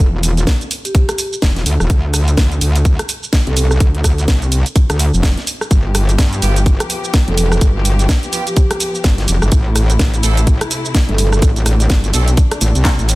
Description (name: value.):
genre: bass house.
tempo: 126 BPM.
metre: 4/4.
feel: swing 59% on 16ths.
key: unclear.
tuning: A4 = 438 Hz.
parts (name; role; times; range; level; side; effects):
metallic wobble bass; bass; 0.0-13.2 s; E1 to G2; -14 LUFS; equal; distortion, chorus, sidechain pumping.
garage drum kit; drums; 0.0-13.2 s; handclaps, hi-hat, rim click, shaker, snare drum; -20 LUFS; right 1 dB; studio reverb, soft clipping on snare.
electronic kick drum; drums; 0.5-13.0 s; none; -13 LUFS; equal; studio reverb.
vibraphone with soft mallets; melody; 0.8-3.8, 7.3-11.4 s; G4 to A4; -26 LUFS; right 2 dB; tape echo.
muted studio string section; sustained chords; 5.7-13.2 s; C3 to G4; -26 LUFS; left 3 dB; vintage 12-bit sampler grit, sidechain pumping.
clear horn section; stabs; 6.4-12.3 s; B3 to A4; -26 LUFS; right 5 dB; sidechain pumping, tape echo.
room: digital ambience.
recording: dense, heavily limited modern master.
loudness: -12 LUFS.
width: side -20 dB against mid.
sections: 0.0-13.2 A section.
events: drum fill 12.9-13.2.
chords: 0.0 Em; 1.9 N.C.; 5.7 G7; 9.5 Am.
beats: 0.47 0.95 1.42 | 1.90 2.38 2.85 3.33 | 3.80 4.28 4.76 5.23 | 5.71 6.18 6.66 7.14 | 7.61 8.09 8.57 9.04 | 9.52 9.99 10.47 10.95 | 11.42 11.90 12.38 12.85.